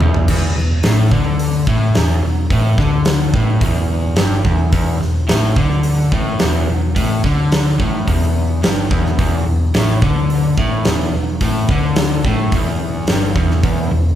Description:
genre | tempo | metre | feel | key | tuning
blues rock power trio and southern rock | 108 BPM | 4/4 | straight | unclear | A4 = 439 Hz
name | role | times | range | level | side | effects
crunchy overdriven guitar | riff | 0.0-14.1 s | E2 to D3 | -17 LUFS | left 1 dB | none
vintage muted picked electric bass | bass | 0.0-14.2 s | E1 to D2 | -20 LUFS | equal | none
huge arena drum kit | drums | 0.0-13.8 s | crash cymbal, hi-hat, kick drum, snare drum, toms | -18 LUFS | right 1 dB | none
room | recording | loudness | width
moderate large studio reverb, RT60 0.9 s | band playing live in one room | -13 LUFS | side -11 dB against mid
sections
0.3-14.2 A section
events
drum fill 0.0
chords
0.0 Esus4

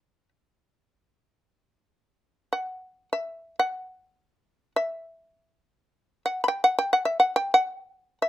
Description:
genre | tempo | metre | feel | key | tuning
japanese traditional, Japanese chamber music | free time | none | none | E minor | A4 = 441 Hz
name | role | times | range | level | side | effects
shamisen | solo | 0.0-8.3 s | B4 to B5 | -22 LUFS | equal | none
room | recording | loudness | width
light reverb | close, detailed microphones | -24 LUFS | side -14 dB against mid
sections
0.0-8.3 A section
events
none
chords
none

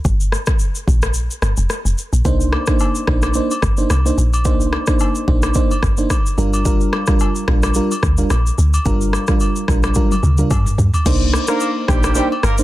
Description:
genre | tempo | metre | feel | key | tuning
afrobeats | 109 BPM | 4/4 | swing 55% on 16ths | C minor | A4 = 440 Hz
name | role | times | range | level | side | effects
deep log drum bass | bass | 0.0-12.6 s | F1 to G2 | -17 LUFS | equal | none
afro-pop drum kit | drums | 0.0-12.6 s | crash cymbal, kick drum, rim click, shaker, toms | -18 LUFS | equal | soft clipping on snare
mellow FM electric piano | accompaniment | 2.2-12.6 s | G3 to C5 | -20 LUFS | right 2 dB | chorus
agogo bells and woodblock | percussion | 2.5-12.4 s | none | -27 LUFS | left 2 dB | none
mellow horn section | second line | 11.5-12.6 s | G3 to Bb4 | -22 LUFS | left 1 dB | digital delay
room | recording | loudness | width
little or no reverb | dense, heavily limited modern master | -14 LUFS | side -16 dB against mid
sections
0.0-11.1 A section; 11.1-12.6 B section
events
kick muted 1.2-2.3; drum fill 10.0-11.1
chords
0.0 Gm7; 2.3 Cm9; 6.4 Gm7; 11.1 Cm9

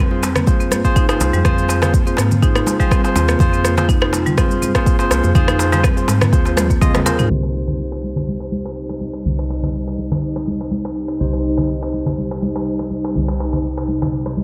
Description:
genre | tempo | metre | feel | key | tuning
afro house | 123 BPM | 4/4 | straight | C minor | A4 = 440 Hz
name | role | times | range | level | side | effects
ethereal airy pad | sustained chords | 1.1-14.4 s | C3 to F4 | -28 LUFS | equal | ensemble chorus, built-in reverb, phaser, sidechain pumping
marimba with hard mallets | arpeggios | 0.0-7.3 s | G3 to C5 | -25 LUFS | equal | sidechain pumping, digital delay
woody FM bass | bass | 0.0-14.4 s | C2 to Ab2 | -24 LUFS | equal | sidechain pumping
barky tine electric piano | stabs | 0.1-14.4 s | Eb4 to Eb5 | -26 LUFS | equal | sidechain pumping, digital delay
congas | percussion | 0.1-14.4 s | none | -27 LUFS | equal | none
deep house drum kit | drums | 0.2-14.4 s | rim click, shaker, toms | -25 LUFS | equal | overdrive
darbuka | percussion | 0.2-14.4 s | none | -32 LUFS | equal | none
electronic kick drum | drums | 0.5-6.9 s | none | -18 LUFS | equal | overdrive
room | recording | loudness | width
moderate concert hall reverb, RT60 2.0 s | low-pass filter | -17 LUFS | mono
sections
0.0-7.3 A section; 7.3-14.4 B section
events
drum fill 6.6-7.3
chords
0.0 Fm; 7.3 Cm

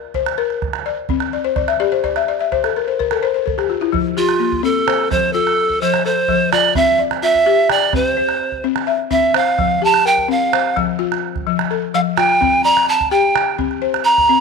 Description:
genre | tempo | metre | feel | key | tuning
west african traditional, West African string and xylophone music | 85 BPM (dotted quarters) | 12/8 | straight | F major | A4 = 443 Hz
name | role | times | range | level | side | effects
balafon | arpeggios | 0.0-14.4 s | F3 to G5 | -19 LUFS | left 13 dB | none
calabash | percussion | 0.1-14.3 s | none | -23 LUFS | right 9 dB | none
breathy bright pan flute | melody | 4.2-14.4 s | F4 to Bb5 | -14 LUFS | right 3 dB | none
room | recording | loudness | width
light reverb, studio reverb | 1960s-style stereo with parts hard left and right | -14 LUFS | side -4 dB against mid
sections
0.0-3.9 A section; 3.9-14.4 B section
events
balafon fill 1.3-3.9; pan flute solo 3.9-14.4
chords
0.0 Bb; 1.1 C5; 3.9 F; 6.8 C; 9.6 F; 12.4 C5

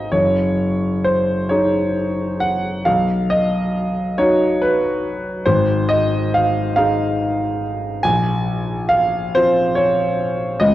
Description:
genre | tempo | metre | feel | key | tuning
classical, impressionist solo piano | 43-48 BPM (dotted quarters) | 6/8 | rubato | unclear | A4 = 441 Hz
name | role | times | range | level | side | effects
clear baby grand piano | solo | 0.0-10.7 s | Gb1 to Ab5 | -16 LUFS | equal | none
room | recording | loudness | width
moderate recital hall reverb, RT60 1.8 s | worn, warbling old tape, cassette tape, warbly pitch drift | -16 LUFS | side -14 dB against mid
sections
0.0-10.7 A section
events
none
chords
0.1 Gbsus2; 2.9 B; 5.5 Ab5; 8.0 Bbm9

